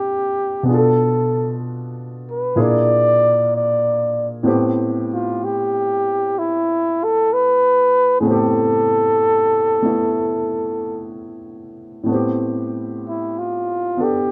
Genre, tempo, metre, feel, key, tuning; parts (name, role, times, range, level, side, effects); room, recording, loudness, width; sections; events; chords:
jazz ballad; 63 BPM; 4/4; swing 67% on 8ths; A minor; A4 = 444 Hz
breathy flugelhorn; melody; 0.0-14.3 s; E4 to D5; -19 LUFS; equal
warm baby grand piano; accompaniment; 0.0-14.3 s; A2 to A4; -24 LUFS; equal
moderate echo chamber reverb, RT60 1.5 s; -18 LUFS; mono
0.0-12.1 A section; 12.1-14.3 A section
0.0 Bb69; 0.7 Bm7b5; 2.6 Bb7#11; 4.5 Am9